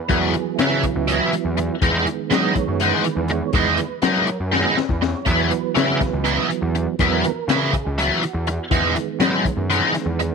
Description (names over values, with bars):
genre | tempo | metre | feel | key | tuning
psychedelic rock | 244 BPM (eighths) | 7/8 | straight | E lydian | A4 = 443 Hz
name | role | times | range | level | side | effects
mellow tonewheel organ | sustained chords | 0.0-10.3 s | D#3 to D#5 | -25 LUFS | right 14 dB | slow rotary speaker, chorus vibrato
biting overdriven guitar | riff | 0.1-10.2 s | E3 to E4 | -20 LUFS | left 1 dB | rotary speaker
fuzz picked electric bass | bass | 0.1-10.3 s | C#2 to F#3 | -24 LUFS | equal | overdrive
crunchy breakbeat drum kit | drums | 0.1-10.3 s | hi-hat, kick drum, snare drum | -24 LUFS | left 5 dB | none
room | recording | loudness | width
light reverb, small room ambience | 1960s-style stereo | -17 LUFS | side -5 dB against mid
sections
0.0-10.3 A section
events
tonewheel organ solo 0.0-10.3; drum fill 4.5-5.3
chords
0.0 Esus2; 1.8 G#m/E; 5.3 Esus2; 8.7 G#m/E